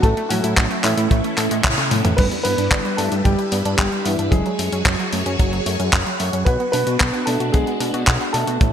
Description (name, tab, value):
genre	italo disco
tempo	112 BPM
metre	4/4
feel	straight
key	unclear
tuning	A4 = 441 Hz
part	warm baby grand piano	melody	0.0-8.7 s	E3 to B4	-24 LUFS	left 1 dB	ping-pong delay
part	phased string machine	sustained chords	0.0-8.7 s	F#3 to C#5	-25 LUFS	equal	ensemble chorus, phaser
part	analog pluck	arpeggios	0.0-8.7 s	E3 to A4	-27 LUFS	right 3 dB	chorus, ping-pong delay
part	fat analog bass	bass	0.0-8.7 s	F#1 to B2	-24 LUFS	equal	none
part	clean 12-bit digital drum machine	drums	0.0-8.7 s	crash cymbal, handclaps, hi-hat, toms	-22 LUFS	equal	gated reverb
part	kick drum	drums	0.0-8.7 s	none	-18 LUFS	equal	none
room	light reverb, studio reverb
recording	bright 1980s-style digital production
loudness	-16 LUFS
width	side -9 dB against mid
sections	0.0-2.2 A section; 2.2-8.7 A section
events	drum fill 1.6-2.2; band accent 1.6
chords	0.0 A; 2.2 G6; 4.3 F#madd9; 6.5 Bm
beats	| 0.04 0.57 1.11 1.65 | 2.18 2.72 3.25 3.79 | 4.32 4.86 5.39 5.93 | 6.47 7.00 7.54 8.07 | 8.61